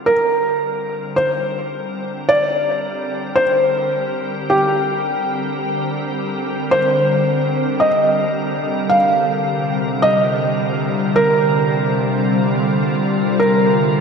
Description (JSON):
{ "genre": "ambient", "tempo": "54 BPM", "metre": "3/4", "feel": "straight", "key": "C minor", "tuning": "A4 = 438 Hz", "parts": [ { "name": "felt-muted upright piano", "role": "melody", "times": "0.0-14.0 s", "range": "G4 to F5", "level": "-17 LUFS", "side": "right 1 dB", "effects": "tape echo" }, { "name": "soft additive organ-like pad", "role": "sustained chords", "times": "0.0-14.0 s", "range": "D3 to Bb4", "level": "-20 LUFS", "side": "left 1 dB", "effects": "ensemble chorus, built-in reverb" }, { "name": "bowed-like drone", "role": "drone", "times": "9.2-14.0 s", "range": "C3", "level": "-25 LUFS", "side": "right 2 dB", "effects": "built-in reverb" } ], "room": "wet lush hall reverb, RT60 2.5 s", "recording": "none", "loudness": "-15 LUFS", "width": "side -6 dB against mid", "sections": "0.0-14.0 A section", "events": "fade-in on ambient pad 0.0-14.0", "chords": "0.0 G7sus4; 7.8 Cm9", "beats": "0.06 | 1.17 2.28 3.39 | 4.50 5.62 6.73 | 7.84 8.95 10.06 | 11.17 12.28 13.39" }